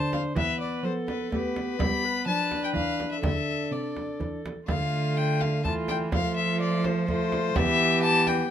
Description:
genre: classical, renaissance-style consort dance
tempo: 126 BPM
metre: 3/4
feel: straight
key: D dorian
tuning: A4 = 440 Hz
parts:
  - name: warm violin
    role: melody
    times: 0.0-8.5 s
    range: B4 to B5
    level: -28 LUFS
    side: left 6 dB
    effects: none
  - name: warm viola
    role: second line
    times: 0.0-8.5 s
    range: F4 to C5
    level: -33 LUFS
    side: right 4 dB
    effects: none
  - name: mellow trombone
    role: accompaniment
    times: 0.0-8.5 s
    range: A3 to D4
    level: -31 LUFS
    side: left 1 dB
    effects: none
  - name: dark cello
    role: bass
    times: 0.0-8.5 s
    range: C3 to A3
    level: -30 LUFS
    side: right 2 dB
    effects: none
  - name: frame drum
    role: percussion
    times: 0.1-8.5 s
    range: none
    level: -32 LUFS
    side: right 1 dB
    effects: none
room: light reverb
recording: minimal, uncompressed stereo recording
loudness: -24 LUFS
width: side -10 dB against mid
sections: 0.0-4.7 A section; 4.7-8.5 A section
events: none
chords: 0.4 Em; 1.8 G; 3.2 D5; 4.7 Dm; 6.1 F; 7.6 Em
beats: | 0.36 0.84 1.32 | 1.79 2.27 2.75 | 3.23 3.72 4.20 | 4.69 5.17 5.64 | 6.12 6.60 7.08 | 7.55 8.03 8.51

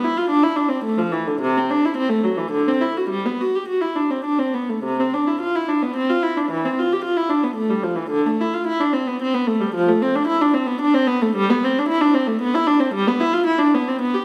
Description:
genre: classical, baroque-style suite movement for unaccompanied viola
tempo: 98-116 BPM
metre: 3/4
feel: rubato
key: G major, C major from 4.8 s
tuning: A4 = 440 Hz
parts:
  - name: warm viola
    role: solo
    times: 0.0-14.2 s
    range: C3 to G4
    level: -20 LUFS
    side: equal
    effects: none
room: wet recital hall reverb, RT60 1.5 s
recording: recorded in a church or concert hall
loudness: -20 LUFS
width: mono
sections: 0.0-4.8 A section; 4.8-14.2 A section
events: none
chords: none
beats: 0.32 0.85 | 1.41 1.96 2.52 | 3.10 3.68 4.25 | 4.85 5.42 5.97 | 6.51 7.04 7.58 | 8.13 8.68 9.22 | 9.75 10.27 10.80 | 11.35 11.89 12.41 | 12.95 13.48 14.03

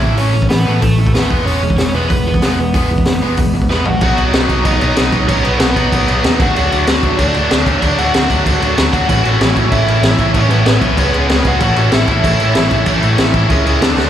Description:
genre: punk rock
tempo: 190 BPM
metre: 4/4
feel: straight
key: unclear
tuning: A4 = 441 Hz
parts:
  - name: overdriven semi-hollow guitar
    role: melody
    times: 0.0-13.8 s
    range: A3 to F#5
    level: -19 LUFS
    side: right 1 dB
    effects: slapback echo, tape echo
  - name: distorted electric guitar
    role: riff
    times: 0.0-14.1 s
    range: A2 to A4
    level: -20 LUFS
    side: left 13 dB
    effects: overdrive, slapback echo
  - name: distorted electric guitar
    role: riff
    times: 0.0-14.1 s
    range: A2 to A4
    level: -20 LUFS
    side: right 13 dB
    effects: overdrive, slapback echo
  - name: overdriven picked electric bass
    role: bass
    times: 0.0-14.1 s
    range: E1 to D#2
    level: -17 LUFS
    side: equal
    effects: none
  - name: raw garage drum kit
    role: drums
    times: 0.0-14.1 s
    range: crash cymbal, hi-hat, kick drum, snare drum, toms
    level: -15 LUFS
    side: equal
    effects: none
  - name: distorted electric guitar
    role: riff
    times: 9.1-14.1 s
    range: A2 to D4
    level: -21 LUFS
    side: left 1 dB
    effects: overdrive, slapback echo
room: little or no reverb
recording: live gig heard through the venue's PA, club reverb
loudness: -11 LUFS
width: side -10 dB against mid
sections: 0.0-4.0 A section; 4.0-14.1 B section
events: drum fill 3.7-4.0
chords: 0.0 A; 1.3 E; 4.0 B; 6.4 D; 9.1 A; 11.0 C#5; 11.6 A; 13.5 C#5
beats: | 0.19 0.51 0.83 1.15 | 1.47 1.79 2.11 2.43 | 2.75 3.07 3.38 3.70 | 4.02 4.34 4.66 4.97 | 5.29 5.61 5.92 6.24 | 6.56 6.87 7.19 7.50 | 7.82 8.14 8.45 8.77 | 9.08 9.40 9.71 10.03 | 10.35 10.66 10.98 11.29 | 11.61 11.92 12.24 12.55 | 12.87 13.19 13.50 13.82

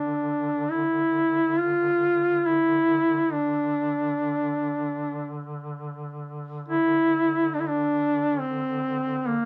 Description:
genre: caucasian folk, Caucasian lament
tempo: free time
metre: none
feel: none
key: D minor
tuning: A4 = 440 Hz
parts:
  - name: clear duduk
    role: melody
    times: 0.0-9.5 s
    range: Bb3 to F4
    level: -25 LUFS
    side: equal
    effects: none
  - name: warm duduk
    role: drone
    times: 0.0-9.5 s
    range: D3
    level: -38 LUFS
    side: equal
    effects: none
room: moderate small room reverb, RT60 0.6 s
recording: none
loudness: -24 LUFS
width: mono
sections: 0.0-9.5 A section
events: none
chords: none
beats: free time

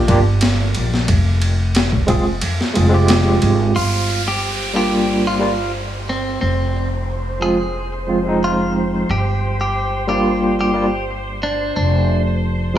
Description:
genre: trip hop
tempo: 90 BPM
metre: 4/4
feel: straight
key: G phrygian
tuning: A4 = 440 Hz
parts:
  - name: barky tine electric piano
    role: accompaniment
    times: 0.0-12.8 s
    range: F3 to Ab4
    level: -19 LUFS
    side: right 1 dB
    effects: medium stereo tremolo, tape echo
  - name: upright bass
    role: bass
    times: 0.1-12.8 s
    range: F1 to F2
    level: -19 LUFS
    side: equal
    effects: none
  - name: boom bap sampler-style drum kit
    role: drums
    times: 0.1-3.6 s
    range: kick drum, ride cymbal, snare drum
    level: -19 LUFS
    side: equal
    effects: overdrive
  - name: muted studio violin section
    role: sustained chords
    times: 3.7-12.8 s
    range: C5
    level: -28 LUFS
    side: right 1 dB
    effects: low-pass filter
  - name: downlifter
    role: sound effects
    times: 3.7-9.1 s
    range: none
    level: -27 LUFS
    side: right 2 dB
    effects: none
  - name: clean electric guitar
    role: melody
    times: 3.8-12.2 s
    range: C4 to Ab4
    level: -22 LUFS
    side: equal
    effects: spring reverb, tape echo
room: little or no reverb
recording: small room ambience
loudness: -15 LUFS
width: side -11 dB against mid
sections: 0.0-3.8 A section; 3.8-12.8 B section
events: kick drops out 2.4-3.8; filter sweep on violin section 3.8-12.8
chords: 0.0 Gm; 1.1 Fm; 3.8 Gm7; 6.4 Fm; 9.1 Gm7; 11.8 F5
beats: 0.42 | 1.08 1.75 2.42 3.08 | 3.75 4.42 5.08 5.75 | 6.42 7.08 7.75 8.42 | 9.09 9.75 10.42 11.09 | 11.75 12.42

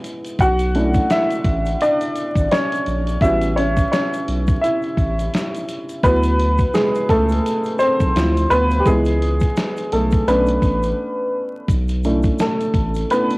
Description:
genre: lo-fi hip hop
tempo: 85 BPM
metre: 4/4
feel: swing 59% on 16ths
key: unclear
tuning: A4 = 444 Hz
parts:
  - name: warm upright piano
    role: accompaniment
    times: 0.0-13.4 s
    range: E3 to F#5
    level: -18 LUFS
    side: equal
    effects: cassette tape, low-pass filter
  - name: dusty soul sampler-style drum kit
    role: drums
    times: 0.0-13.4 s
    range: hi-hat, kick drum, snare drum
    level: -22 LUFS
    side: equal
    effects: none
  - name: egg shaker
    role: percussion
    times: 0.1-13.4 s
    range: none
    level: -48 LUFS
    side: left 6 dB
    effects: none
  - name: saturated sub bass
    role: bass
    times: 0.4-13.0 s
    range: G#1 to D2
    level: -20 LUFS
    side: equal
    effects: none
room: light reverb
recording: home recording on cassette, vinyl crackle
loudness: -16 LUFS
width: side -22 dB against mid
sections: 0.0-11.7 A section; 11.7-13.4 B section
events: upright piano solo 0.0-11.7, 11.7-13.4; break 11.0-11.7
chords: 0.4 Bm11; 3.2 A13; 6.0 D69; 8.2 Dm7; 8.9 C#m7; 10.3 Bm7; 11.7 Bm11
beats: | 0.39 1.09 1.80 2.51 | 3.21 3.92 4.62 5.33 | 6.04 6.74 7.45 8.15 | 8.86 9.57 10.27 10.98 | 11.68 12.39 13.10

